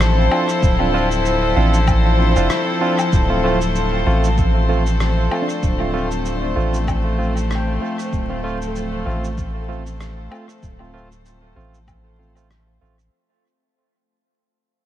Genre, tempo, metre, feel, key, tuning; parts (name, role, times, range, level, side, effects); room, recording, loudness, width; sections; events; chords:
ambient dub; 96 BPM; 4/4; swing 56% on 16ths; D minor; A4 = 440 Hz
rich chamber string section; sustained chords; 0.0-13.1 s; F3 to C5; -22 LUFS; left 2 dB
handpan; arpeggios; 0.0-0.9, 5.4-11.8 s; C4 to G5; -32 LUFS; left 3 dB; analog delay
soft dub sub bass; bass; 0.0-13.1 s; D1 to A1; -19 LUFS; equal
electronic rim click, shaker and woodblock; drums; 0.0-13.1 s; -29 LUFS; left 2 dB; dub echo
barky tine electric piano; stabs; 0.3-13.0 s; A3 to F4; -24 LUFS; right 3 dB; medium stereo tremolo, dub echo
electronic kick drum; drums; 0.6-12.0 s; -20 LUFS; equal
moderate huge ambient reverb, RT60 9.0 s; dreamy mix soaked in reverb, vinyl crackle; -16 LUFS; side -12 dB against mid
0.0-13.1 A section
fade-out 3.1-13.1
0.0 Dm7